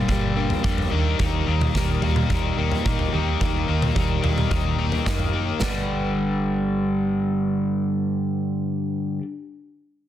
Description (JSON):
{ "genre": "quiet-loud alternative rock", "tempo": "109 BPM", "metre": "4/4", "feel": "straight", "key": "G minor", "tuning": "A4 = 440 Hz", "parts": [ { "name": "fingerpicked plugged-in swing-style acoustic guitar", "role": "arpeggios", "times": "0.0-9.2 s", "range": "G2 to G4", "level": "-28 LUFS", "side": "right 6 dB", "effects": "none" }, { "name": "crunchy overdriven guitar", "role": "riff", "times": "0.0-9.2 s", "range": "G2 to Eb4", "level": "-25 LUFS", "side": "left 4 dB", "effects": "spring reverb" }, { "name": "hollow-body short-scale fingered electric bass", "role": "bass", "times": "0.0-9.2 s", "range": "G1 to Bb2", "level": "-27 LUFS", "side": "right 1 dB", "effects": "none" }, { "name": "big rock drum kit", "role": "drums", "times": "0.1-5.7 s", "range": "kick drum, snare drum, toms", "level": "-24 LUFS", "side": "equal", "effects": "none" } ], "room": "moderate large studio reverb, RT60 1.2 s, small room ambience", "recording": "dense, heavily limited modern master", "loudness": "-20 LUFS", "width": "side -12 dB against mid", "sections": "0.0-5.6 A section; 5.6-7.8 B section", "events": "none", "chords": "0.0 Gm; 0.9 Eb; 5.6 G", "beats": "0.09 0.64 | 1.20 1.75 2.30 2.85 | 3.40 3.96 4.51 5.06 | 5.62 6.17 6.72 7.27" }